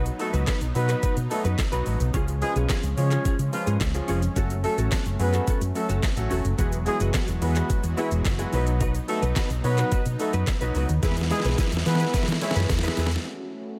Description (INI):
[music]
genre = dance-pop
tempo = 108 BPM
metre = 4/4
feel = straight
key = F# dorian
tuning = A4 = 437 Hz
[part]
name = clear concert grand piano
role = accompaniment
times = 0.0-13.8 s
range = E#3 to C#5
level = -36 LUFS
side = equal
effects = sidechain pumping, low-pass filter
[part]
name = warm analog pad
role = sustained chords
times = 0.0-13.8 s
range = E3 to F#4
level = -38 LUFS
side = equal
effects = chorus, tremolo, sidechain pumping, low-pass filter
[part]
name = direct-recorded clean electric guitar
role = riff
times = 0.0-13.2 s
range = B3 to B4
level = -36 LUFS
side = equal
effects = ensemble chorus
[part]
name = fingered electric bass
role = bass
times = 0.0-13.2 s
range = E1 to E3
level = -27 LUFS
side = equal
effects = sidechain pumping
[part]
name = smooth R&B drum kit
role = drums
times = 0.1-13.3 s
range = handclaps, hi-hat, kick drum, shaker, snare drum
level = -30 LUFS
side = equal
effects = none
[part]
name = egg shaker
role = percussion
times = 0.1-13.2 s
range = none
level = -50 LUFS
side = equal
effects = none
[part]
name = mellow horn section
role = melody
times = 0.2-12.5 s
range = E3 to C#5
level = -32 LUFS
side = equal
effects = none
[sound]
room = little or no reverb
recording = none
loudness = -24 LUFS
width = mono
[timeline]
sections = 0.0-13.3 A section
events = drop 0.0-13.3; drum fill 11.0-13.3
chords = 0.0 B; 2.1 C#; 4.4 F#m; 6.6 Eadd9; 8.5 B; 11.0 E; 13.3 F#m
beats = 0.47 1.03 1.58 | 2.14 2.70 3.25 3.81 | 4.36 4.92 5.47 6.03 | 6.58 7.14 7.70 8.25 | 8.81 9.36 9.92 10.47 | 11.03 11.59 12.14 12.70 | 13.25